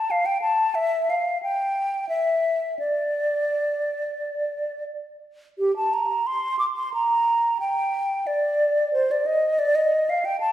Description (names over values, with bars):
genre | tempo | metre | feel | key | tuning
classical, baroque-style fantasia for unaccompanied flute | 90 BPM | 4/4 | rubato | D minor, G minor from 5.6 s | A4 = 440 Hz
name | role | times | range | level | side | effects
mellow hollow silver concert flute | solo | 0.0-10.5 s | G4 to D6 | -21 LUFS | equal | none
room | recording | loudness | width
wet recital hall reverb, RT60 1.6 s | heard from further back in the room | -21 LUFS | side -12 dB against mid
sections
0.0-5.6 A section; 5.6-10.5 A section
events
none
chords
none